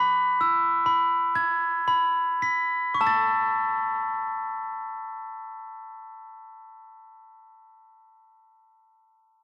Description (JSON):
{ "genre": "children's music, lullaby", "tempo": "50-69 BPM", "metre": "3/4", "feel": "rubato", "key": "A major", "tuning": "A4 = 444 Hz", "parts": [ { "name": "glockenspiel with rubber mallets", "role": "solo", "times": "0.0-7.6 s", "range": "A5 to B6", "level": "-23 LUFS", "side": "equal", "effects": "none" } ], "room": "studio reverb", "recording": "dry, close 1970s-style studio recording", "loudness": "-22 LUFS", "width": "side -17 dB against mid", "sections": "0.0-3.0 A section; 3.0-6.5 B section", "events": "slowing down 0.0-3.0", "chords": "0.0 E5; 0.9 Bm6; 3.0 A" }